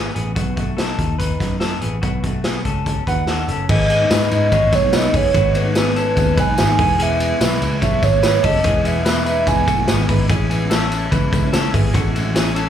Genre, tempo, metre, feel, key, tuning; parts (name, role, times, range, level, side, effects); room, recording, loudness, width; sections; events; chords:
jangly indie pop; 145 BPM; 4/4; straight; B mixolydian; A4 = 441 Hz
electric guitar through a small old amp; arpeggios; 0.0-12.7 s; A3 to C#5; -25 LUFS; left 6 dB; slapback echo, tape echo
vintage muted picked electric bass; bass; 0.0-12.7 s; E1 to G#2; -20 LUFS; equal
raw garage drum kit; drums; 0.2-12.7 s; crash cymbal, hi-hat, kick drum, ride cymbal, snare drum; -20 LUFS; equal
hollow clarinet-like synth lead; melody; 3.1-10.1 s; B4 to G#5; -19 LUFS; right 3 dB; chorus, slapback echo
picked steel-string acoustic guitar; accompaniment; 3.7-12.7 s; D#3 to E4; -26 LUFS; right 4 dB; slapback echo
tambourine; percussion; 3.9-12.7 s; -35 LUFS; left 6 dB
light reverb; live gig heard through the venue's PA, club reverb; -15 LUFS; side -9 dB against mid
0.0-3.7 A section; 3.7-12.7 B section
0.4 B; 6.8 E; 10.3 Amaj7